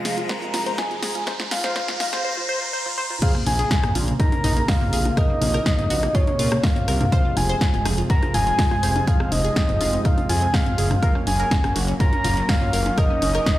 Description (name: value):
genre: progressive house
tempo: 123 BPM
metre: 4/4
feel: straight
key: Bb minor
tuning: A4 = 441 Hz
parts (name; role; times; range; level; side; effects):
- soft octave-layered synth lead; melody; 0.0-13.6 s; Db5 to Bb5; -25 LUFS; equal; chorus, dub echo
- warm analog pad; sustained chords; 0.0-13.6 s; C3 to Db4; -29 LUFS; right 1 dB; chorus, sidechain pumping
- riser; sound effects; 0.0-3.2 s; none; -29 LUFS; right 1 dB; none
- backwards swelling texture; texture; 0.0-2.2 s; Bb5; -37 LUFS; right 1 dB; built-in reverb, sidechain pumping
- wide unison pluck; arpeggios; 0.1-13.6 s; Bb3 to C5; -29 LUFS; equal; sidechain pumping, dub echo
- fat analog bass; bass; 0.1-13.4 s; F1 to Bb2; -24 LUFS; equal; sidechain pumping
- house drum kit; drums; 0.1-13.6 s; crash cymbal, hi-hat, snare drum, toms; -28 LUFS; equal; none
- electronic kick drum; drums; 0.3-13.6 s; none; -20 LUFS; equal; overdrive, high-pass filter on kick
- punchy analog drum machine; percussion; 3.3-13.4 s; congas, rim click, toms; -28 LUFS; left 1 dB; sidechain pumping on snare, sidechain pumping on perc, sidechain pumping on toms
room: light reverb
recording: played on a big sound system in a bare room, large studio reverb, high-pass filter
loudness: -18 LUFS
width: side -15 dB against mid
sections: 0.0-3.2 A section; 3.2-13.6 B section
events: build-up 0.0-3.2; drum fill 0.0-2.2, 2.9-3.2; riser 0.0-3.2; filter sweep on synth pluck 0.0-3.2; filter sweep on soft synth lead 0.0-3.2; filter sweep 0.0-3.2; drop 3.2-13.6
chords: 0.0 Fm; 3.2 Bbmadd9; 7.1 Fm; 11.0 Gb